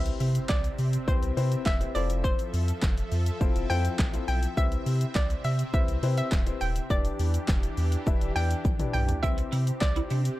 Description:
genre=dance-pop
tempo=103 BPM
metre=4/4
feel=straight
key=C major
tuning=A4 = 439 Hz
part: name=hollow square pluck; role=melody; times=0.0-10.4 s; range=C5 to G5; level=-34 LUFS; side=equal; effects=chorus, digital delay
part: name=warm baby grand piano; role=accompaniment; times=0.0-10.1 s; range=C4 to E5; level=-35 LUFS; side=left 7 dB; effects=sidechain pumping
part: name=filtered supersaw swell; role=sustained chords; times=0.0-10.4 s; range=C3 to E5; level=-38 LUFS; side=right 2 dB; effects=sidechain pumping
part: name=warm sub bass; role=bass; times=0.0-10.3 s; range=D1 to C3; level=-27 LUFS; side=equal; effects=sidechain pumping
part: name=impact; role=sound effects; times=0.1-2.2 s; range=none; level=-45 LUFS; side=right 1 dB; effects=none
part: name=house drum kit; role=drums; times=0.1-10.4 s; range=handclaps, hi-hat, kick drum, shaker, snare drum, toms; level=-28 LUFS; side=equal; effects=none
part: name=twelve-string electric guitar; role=riff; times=9.2-10.2 s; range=C4 to E4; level=-37 LUFS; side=right 6 dB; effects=ensemble chorus
room=digital ambience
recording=dark, warm production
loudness=-24 LUFS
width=side -16 dB against mid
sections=0.0-10.4 A section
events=impact 0.0-2.2; drum fill 8.7-9.2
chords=0.0 Cmaj7; 2.0 Fmaj7; 4.6 Cmaj7; 6.9 Em7; 9.2 Cmaj7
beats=0.49 1.08 1.66 | 2.24 2.83 3.41 3.99 | 4.57 5.16 5.74 6.32 | 6.90 7.49 8.07 8.65 | 9.23 9.81

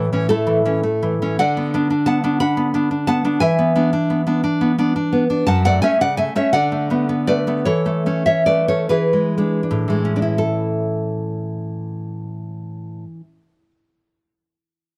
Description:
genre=classical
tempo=37-61 BPM (dotted quarters)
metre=6/8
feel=rubato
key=A major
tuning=A4 = 440 Hz
part: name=nylon-string guitar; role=accompaniment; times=0.0-13.7 s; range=F#2 to B5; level=-19 LUFS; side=equal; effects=none
room=light reverb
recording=close, detailed microphones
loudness=-19 LUFS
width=mono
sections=0.0-10.4 A section; 10.4-15.0 B section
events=slowing down 4.4-10.4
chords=0.0 A; 1.4 Bm/D; 3.4 E7; 5.5 F#m; 6.5 Bm7/D; 7.7 A/E; 8.9 E7; 10.4 A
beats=0.28 | 1.39 2.40 | 3.41 4.44 | 5.47 6.53 | 7.66 8.90 | 10.39 11.78 | 13.18

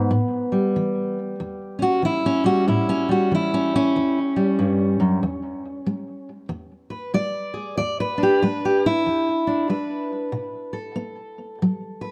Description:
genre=acoustic country blues, solo or duo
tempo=94 BPM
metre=4/4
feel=swing 62% on 8ths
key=unclear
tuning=A4 = 440 Hz
part: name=fingerpicked steel-string acoustic guitar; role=solo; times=0.0-12.1 s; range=E2 to D5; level=-23 LUFS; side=equal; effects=analog delay
room=moderate studio reverb, RT60 0.6 s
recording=dark, warm production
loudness=-22 LUFS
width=mono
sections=0.0-12.1 A section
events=none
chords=0.1 A7; 5.2 E7; 10.3 B7(no3)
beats=| 0.11 0.76 1.40 2.03 | 2.67 3.31 3.95 4.59 | 5.23 5.87 6.50 7.14 | 7.78 8.41 9.05 9.69 | 10.32 10.96 11.60

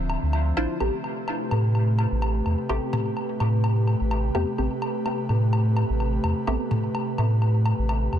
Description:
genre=dub techno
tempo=127 BPM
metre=4/4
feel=swing 56% on 16ths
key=A minor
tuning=A4 = 439 Hz
part: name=airy breathy pad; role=sustained chords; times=0.0-8.2 s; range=C3 to E5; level=-29 LUFS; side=equal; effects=chorus
part: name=filtered dub chord stab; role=stabs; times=0.0-8.1 s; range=A3 to C5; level=-32 LUFS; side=equal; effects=chorus, phaser, dub echo
part: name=pure sine sub bass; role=bass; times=0.0-8.2 s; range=D1 to A2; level=-22 LUFS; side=equal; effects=none
part: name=electronic woodblock and toms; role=percussion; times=0.1-8.2 s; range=none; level=-32 LUFS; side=left 1 dB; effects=dub echo
room=digital ambience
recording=dense, heavily limited modern master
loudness=-22 LUFS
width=side -10 dB against mid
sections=0.0-8.2 A section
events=none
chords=0.0 Dm9; 0.8 Am9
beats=0.33 | 0.81 1.28 1.75 2.22 | 2.69 3.17 3.64 4.11 | 4.58 5.06 5.53 6.00 | 6.47 6.95 7.42 7.89

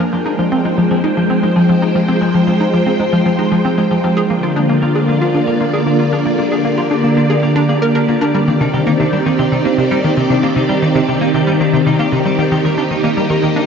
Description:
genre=ambient, sequencer-driven space music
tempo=115 BPM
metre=4/4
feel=straight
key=F dorian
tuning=A4 = 439 Hz
part: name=phased string machine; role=sustained chords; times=0.0-13.7 s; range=D3 to G5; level=-14 LUFS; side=equal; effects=ensemble chorus, phaser, shimmer reverb
part: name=twelve-string electric guitar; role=arpeggios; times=0.0-13.6 s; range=D4 to F5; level=-28 LUFS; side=left 1 dB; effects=auto-pan, ping-pong delay, shimmer reverb
part: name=hollow square pluck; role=riff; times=0.0-13.7 s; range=C3 to Bb4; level=-17 LUFS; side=equal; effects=wide subtle chorus, ping-pong delay, shimmer reverb
part: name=pulsing gated texture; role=texture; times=0.0-13.7 s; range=Bb5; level=-33 LUFS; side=left 1 dB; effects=chorus, built-in reverb, shimmer reverb
room=wet huge ambient reverb, RT60 8.7 s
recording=dreamy mix soaked in reverb, nothing above 7.7 kHz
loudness=-12 LUFS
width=side -6 dB against mid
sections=0.0-13.7 A section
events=fade-in on clean electric guitar 0.0-13.7; fade-in on synth texture 0.0-13.7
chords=0.0 Fmadd9; 4.2 Bb; 8.3 Cmadd9; 12.5 Eb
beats=| 0.00 0.52 1.04 1.56 | 2.08 2.60 3.13 3.65 | 4.17 4.69 5.21 5.74 | 6.26 6.78 7.30 7.82 | 8.34 8.87 9.39 9.91 | 10.43 10.95 11.47 12.00 | 12.52 13.04 13.56

